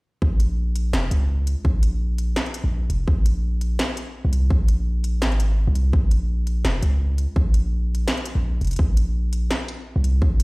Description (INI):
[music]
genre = half-time drum and bass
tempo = 168 BPM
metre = 4/4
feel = swing 55% on 16ths, half-time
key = Bb minor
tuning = A4 = 439 Hz
[part]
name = long sustained 808-style bass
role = bass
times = 0.2-10.4 s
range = F1 to Db2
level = -20 LUFS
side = equal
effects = tube saturation
[part]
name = electronic kick drum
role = drums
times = 0.2-10.3 s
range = none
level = -19 LUFS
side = equal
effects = none
[part]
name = industrial drum kit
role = drums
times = 0.4-10.4 s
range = hi-hat, snare drum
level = -28 LUFS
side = equal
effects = none
[sound]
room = digital ambience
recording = played on a big sound system in a bare room, stone room reverb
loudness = -19 LUFS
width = side -26 dB against mid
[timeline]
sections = 0.2-10.4 A section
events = none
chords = none